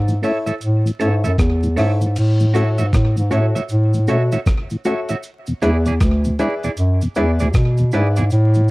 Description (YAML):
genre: roots reggae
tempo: 78 BPM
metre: 4/4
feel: swing 62% on 16ths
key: A major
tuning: A4 = 436 Hz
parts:
  - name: dark bass clarinet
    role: bass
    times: 0.0-8.7 s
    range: D2 to B2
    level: -16 LUFS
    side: equal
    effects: none
  - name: mellow tonewheel organ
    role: accompaniment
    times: 0.1-8.6 s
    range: E2 to F#4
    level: -21 LUFS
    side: left 1 dB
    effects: chorus vibrato, slow rotary speaker
  - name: breakbeat sampler-style drum kit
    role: drums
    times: 0.1-8.7 s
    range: crash cymbal, hi-hat, kick drum, rim click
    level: -19 LUFS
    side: equal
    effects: none
  - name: cabasa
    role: percussion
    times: 0.1-8.7 s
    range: none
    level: -41 LUFS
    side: right 3 dB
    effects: none
  - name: electric guitar at the edge of break-up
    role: accompaniment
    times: 0.2-8.2 s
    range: E4 to E5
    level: -26 LUFS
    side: right 4 dB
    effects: dub echo
  - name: warm upright piano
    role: stabs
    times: 0.2-8.2 s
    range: E4 to E5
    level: -23 LUFS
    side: left 2 dB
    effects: none
room: little or no reverb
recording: dry, close 1970s-style studio recording, vinyl crackle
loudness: -15 LUFS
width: side -22 dB against mid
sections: 0.0-2.2 A section; 2.2-8.7 B section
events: none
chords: 0.0 A; 2.2 A6; 5.2 E7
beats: 0.62 1.39 | 2.16 2.93 3.70 4.47 | 5.24 6.00 6.78 7.54 | 8.31